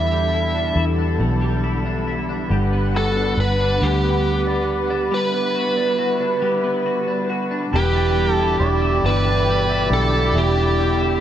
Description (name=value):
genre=six-eight pop ballad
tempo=46 BPM (dotted quarters)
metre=6/8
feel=straight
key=E minor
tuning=A4 = 438 Hz
part: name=biting lead guitar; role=melody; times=0.0-11.2 s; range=G4 to E5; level=-22 LUFS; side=right 1 dB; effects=overdrive
part: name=twelve-string electric guitar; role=accompaniment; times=0.0-11.2 s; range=E2 to F#4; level=-24 LUFS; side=left 3 dB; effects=analog chorus
part: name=muted studio string section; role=sustained chords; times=0.0-11.2 s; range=B2 to F#5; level=-25 LUFS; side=equal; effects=none
part: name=vintage muted fingered electric bass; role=bass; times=0.0-11.2 s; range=E1 to E2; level=-21 LUFS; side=equal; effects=none
part: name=overdriven harmonica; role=second line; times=7.7-11.2 s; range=B4 to D5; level=-24 LUFS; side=right 5 dB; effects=ping-pong delay
room=light reverb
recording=none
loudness=-17 LUFS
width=side -10 dB against mid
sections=0.0-7.7 A section; 7.7-11.2 B section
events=none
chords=0.0 Em7; 2.5 Gmaj7; 7.7 Em7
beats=1.19 | 2.50 3.81 | 5.12 6.43 | 7.74 9.04 | 10.35